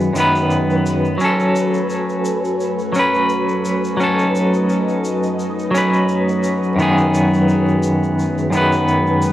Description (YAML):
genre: trip hop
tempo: 86 BPM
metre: 4/4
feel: swing 55% on 16ths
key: F# dorian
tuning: A4 = 440 Hz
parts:
  - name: clean electric guitar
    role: accompaniment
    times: 0.0-9.3 s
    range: F#2 to B4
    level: -16 LUFS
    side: equal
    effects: tremolo, tape echo
  - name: string machine, cellos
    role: sustained chords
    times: 0.0-9.3 s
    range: F#3 to D#5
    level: -21 LUFS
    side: equal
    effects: phaser, ensemble chorus
  - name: egg shaker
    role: percussion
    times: 0.0-9.3 s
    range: none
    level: -37 LUFS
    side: left 2 dB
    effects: none
  - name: flickering grainy texture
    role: texture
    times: 0.0-9.3 s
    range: B4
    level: -28 LUFS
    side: right 1 dB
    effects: built-in reverb
room: moderate echo chamber reverb, RT60 2.2 s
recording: worn, warbling old tape, cassette tape, vinyl crackle, warbly pitch drift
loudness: -15 LUFS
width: side -14 dB against mid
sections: 0.0-9.3 A section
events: none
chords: 0.0 G#m/F#; 1.2 F#m; 6.8 G#m/F#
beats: 0.51 | 1.20 1.90 2.60 3.30 | 4.00 4.69 5.39 6.09 | 6.79 7.48 8.18 8.88